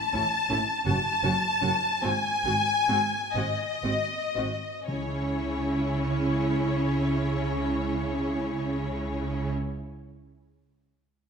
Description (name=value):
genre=classical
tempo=36-57 BPM (dotted quarters)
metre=6/8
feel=rubato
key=C# minor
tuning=A4 = 440 Hz
part: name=rich symphonic violin section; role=melody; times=0.0-9.5 s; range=C#5 to A5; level=-32 LUFS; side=left 4 dB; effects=none
part: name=warm symphonic violin section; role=second line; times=0.0-9.5 s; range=C#4 to A5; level=-30 LUFS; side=left 2 dB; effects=none
part: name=rich chamber viola section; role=accompaniment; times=0.1-9.5 s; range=B#3 to F#4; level=-32 LUFS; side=right 1 dB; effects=none
part: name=warm symphonic cello section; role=bass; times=0.1-9.5 s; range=F#2 to C#3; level=-32 LUFS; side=right 2 dB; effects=none
part: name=warm symphonic double bass section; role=bass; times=0.1-9.5 s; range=F#1 to C#2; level=-33 LUFS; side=right 3 dB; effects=none
part: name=timpani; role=percussion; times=4.9-9.5 s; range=C#3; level=-39 LUFS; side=left 2 dB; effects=none
room=moderate scoring stage reverb, RT60 1.6 s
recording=minimal, uncompressed stereo recording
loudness=-25 LUFS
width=side -6 dB against mid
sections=0.0-4.9 A section; 4.9-10.8 B section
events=slowing down 0.0-4.9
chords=0.0 A; 0.9 F#m; 2.0 G#7; 4.9 C#m